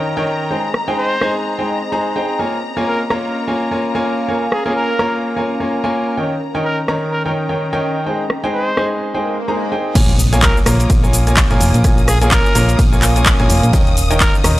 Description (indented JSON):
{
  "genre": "piano house",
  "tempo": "127 BPM",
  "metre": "4/4",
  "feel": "swing 58% on 16ths",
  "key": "Bb dorian",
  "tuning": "A4 = 440 Hz",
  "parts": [
    { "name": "warm studio string section", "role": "sustained chords", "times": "0.0-14.6 s", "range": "Bb5 to Eb6", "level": "-28 LUFS", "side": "left 4 dB", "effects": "sidechain pumping, low-pass filter" },
    { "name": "clear grand piano", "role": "riff", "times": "0.0-14.6 s", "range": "Eb3 to Bb5", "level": "-19 LUFS", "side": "equal", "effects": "sidechain pumping" },
    { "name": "warbly tape-like pad", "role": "texture", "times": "0.0-14.6 s", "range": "C4 to Bb5", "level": "-26 LUFS", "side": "equal", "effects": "chorus, built-in reverb, sidechain pumping" },
    { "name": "house drum kit", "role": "drums", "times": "0.7-14.6 s", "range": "crash cymbal, handclaps, hi-hat, ride cymbal, rim click, shaker", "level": "-19 LUFS", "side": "equal", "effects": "low-pass filter on snare, studio reverb, low-pass filter on hats, low-pass filter on cymbals, low-pass filter on perc" },
    { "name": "clear trumpet", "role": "melody", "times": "1.0-14.3 s", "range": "Ab4 to C5", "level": "-23 LUFS", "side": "equal", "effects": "tape echo" },
    { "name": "swell and impact", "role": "sound effects", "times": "9.2-11.8 s", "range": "none", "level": "-24 LUFS", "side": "equal", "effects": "none" },
    { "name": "solid FM bass", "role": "bass", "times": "10.0-14.6 s", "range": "Eb1 to Bb1", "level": "-15 LUFS", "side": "equal", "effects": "sidechain pumping" },
    { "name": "electronic kick drum", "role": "drums", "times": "10.0-14.3 s", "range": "none", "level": "-15 LUFS", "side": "equal", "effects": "studio reverb" }
  ],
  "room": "light reverb",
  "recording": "dry, gritty hardware recording, transformer saturation",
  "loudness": "-13 LUFS",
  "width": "side -16 dB against mid",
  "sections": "0.0-10.0 A section; 10.0-14.6 B section",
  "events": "swell 9.2-10.0; drop 10.0-14.6; impact 10.0-11.8",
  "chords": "0.0 Eb7; 0.5 Abmaj7; 2.4 Bbm7; 6.2 Eb7; 8.1 Abmaj7; 10.0 Bbm7; 13.7 Eb7",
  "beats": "0.03 | 0.51 0.98 1.45 1.92 | 2.39 2.87 3.34 3.81 | 4.28 4.76 5.23 5.70 | 6.17 6.65 7.12 7.59 | 8.06 8.54 9.01 9.48 | 9.95 10.43 10.90 11.37 | 11.84 12.32 12.79 13.26 | 13.73 14.21"
}